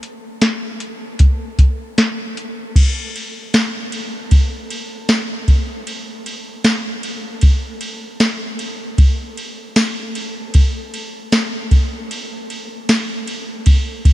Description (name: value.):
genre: dream pop.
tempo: 77 BPM.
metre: 4/4.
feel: straight.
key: none.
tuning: none.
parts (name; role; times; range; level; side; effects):
soft vintage rhythm box; drums; 0.0-14.1 s; crash cymbal, hi-hat, kick drum, ride cymbal, snare drum, tambourine; -16 LUFS; equal; none.
room: light reverb, digital ambience.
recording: none.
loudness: -15 LUFS.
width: side -15 dB against mid.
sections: 0.0-2.8 A section; 2.8-14.1 B section.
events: none.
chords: none.